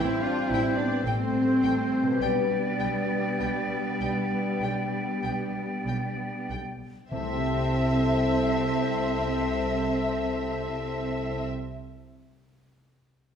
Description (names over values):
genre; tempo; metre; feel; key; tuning
cinematic; 46-58 BPM; 4/4; rubato; C major; A4 = 440 Hz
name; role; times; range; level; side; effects
warm symphonic violin section; melody; 0.0-11.4 s; E5 to G5; -34 LUFS; left 3 dB; none
clear oboe; second line; 0.0-11.4 s; C5 to E5; -36 LUFS; right 1 dB; none
hollow concert flute; second line; 0.0-11.4 s; G5 to A5; -37 LUFS; left 2 dB; none
mellow clarinet; second line; 0.0-11.4 s; B3 to C5; -34 LUFS; left 1 dB; none
warm symphonic violin section; second line; 0.0-11.4 s; B4 to F5; -40 LUFS; left 3 dB; none
warm symphonic viola section; accompaniment; 0.0-11.5 s; G3 to D4; -33 LUFS; right 2 dB; none
mellow French horn section; sustained chords; 0.0-11.4 s; G3 to A4; -34 LUFS; left 3 dB; none
concert harp; arpeggios; 0.0-11.8 s; A2 to G5; -35 LUFS; left 6 dB; none
clear symphonic double bass section; bass; 0.0-11.4 s; A1 to C2; -34 LUFS; right 2 dB; none
rich studio cello section; bass; 0.0-11.4 s; B3 to F4; -33 LUFS; right 3 dB; none
timpani; percussion; 7.1-11.4 s; C3; -41 LUFS; equal; none
room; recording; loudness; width
wet recital hall reverb, RT60 1.4 s; recorded in a church or concert hall; -24 LUFS; side -7 dB against mid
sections
0.0-7.1 A section; 7.1-11.9 B section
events
slowing down 0.0-7.1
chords
0.0 Am7; 2.2 G/B; 7.1 C6